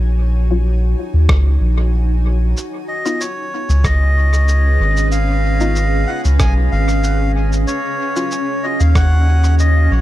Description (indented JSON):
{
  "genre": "ambient dub",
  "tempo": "94 BPM",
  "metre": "4/4",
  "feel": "straight",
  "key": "Eb minor",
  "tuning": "A4 = 440 Hz",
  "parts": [
    { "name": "granular cloud pad", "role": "sustained chords", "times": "0.0-10.0 s", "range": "Db4 to Ab5", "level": "-24 LUFS", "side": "right 1 dB", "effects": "built-in reverb" },
    { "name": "soft dub sub bass", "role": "bass", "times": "0.0-10.0 s", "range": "Ab1 to Eb2", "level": "-13 LUFS", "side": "equal", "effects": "none" },
    { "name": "filtered dub chord stab", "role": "stabs", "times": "0.5-8.4 s", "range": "Gb3 to F4", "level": "-25 LUFS", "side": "left 4 dB", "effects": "analog chorus, cassette tape, dub echo" },
    { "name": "electronic kick drum", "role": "drums", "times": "1.3-9.1 s", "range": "none", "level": "-18 LUFS", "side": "equal", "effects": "small room ambience" },
    { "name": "electronic rim click and cabasa", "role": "drums", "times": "1.3-9.7 s", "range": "none", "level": "-25 LUFS", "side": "equal", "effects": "small room ambience, dub echo" },
    { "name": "melodica", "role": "melody", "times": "2.9-10.0 s", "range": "Db5 to Ab5", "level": "-21 LUFS", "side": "equal", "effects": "dub echo" }
  ],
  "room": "digital ambience",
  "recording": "echo-heavy mix",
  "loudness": "-13 LUFS",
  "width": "side -14 dB against mid",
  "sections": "0.0-10.0 A section",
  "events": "fade-in on ambient pad 0.0-10.0",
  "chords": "0.0 Ebm7; 2.6 Db7; 7.7 Ebm7",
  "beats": "| 0.02 0.66 1.29 1.93 | 2.57 3.21 3.85 4.49 | 5.12 5.76 6.40 7.04 | 7.68 8.32 8.96 9.59"
}